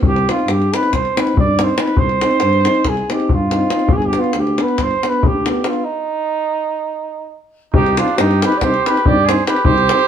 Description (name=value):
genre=balkan folk, Balkan brass band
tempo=280 BPM (eighths)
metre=9/8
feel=straight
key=C harmonic minor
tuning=A4 = 441 Hz
part: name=mellow tuba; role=bass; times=0.0-9.9 s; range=G1 to G2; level=-20 LUFS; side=equal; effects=none
part: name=davul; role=percussion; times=0.0-10.0 s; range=none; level=-18 LUFS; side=left 2 dB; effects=none
part: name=mellow flugelhorn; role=melody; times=0.1-10.1 s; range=Eb4 to D5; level=-18 LUFS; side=right 2 dB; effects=none
part: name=dark French horn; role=accompaniment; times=0.3-10.0 s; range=D4 to Eb4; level=-23 LUFS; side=left 5 dB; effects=none
part: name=warm euphonium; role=accompaniment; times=0.3-10.0 s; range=B3 to C4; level=-25 LUFS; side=right 2 dB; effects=none
part: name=clear trumpet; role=second line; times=7.7-10.1 s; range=D4 to B4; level=-19 LUFS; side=right 6 dB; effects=none
room=moderate stone room reverb, RT60 1.0 s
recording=band playing live in one room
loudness=-14 LUFS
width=side -8 dB against mid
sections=0.0-7.7 A section; 7.7-10.1 A section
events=stop 5.8-7.7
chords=0.0 Cm; 3.9 G; 5.8 N.C.; 7.7 Cm